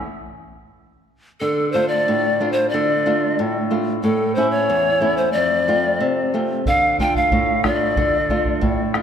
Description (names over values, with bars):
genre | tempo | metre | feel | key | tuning
andean folk, Andean ensemble | 92 BPM | 2/4 | straight | D minor | A4 = 443 Hz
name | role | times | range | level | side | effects
flamenco guitar | accompaniment | 0.0-9.0 s | E2 to F4 | -21 LUFS | right 1 dB | none
polished pan flute | melody | 1.4-8.9 s | A4 to G5 | -19 LUFS | left 1 dB | none
bombo | percussion | 6.7-9.0 s | none | -24 LUFS | equal | none
room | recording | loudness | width
wet concert hall reverb, RT60 2.0 s | none | -16 LUFS | side -8 dB against mid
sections
0.0-1.4 A section; 1.4-9.0 B section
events
stop 0.1-1.4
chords
0.1 N.C.; 1.4 Dm; 4.0 A; 5.3 F; 6.7 Dm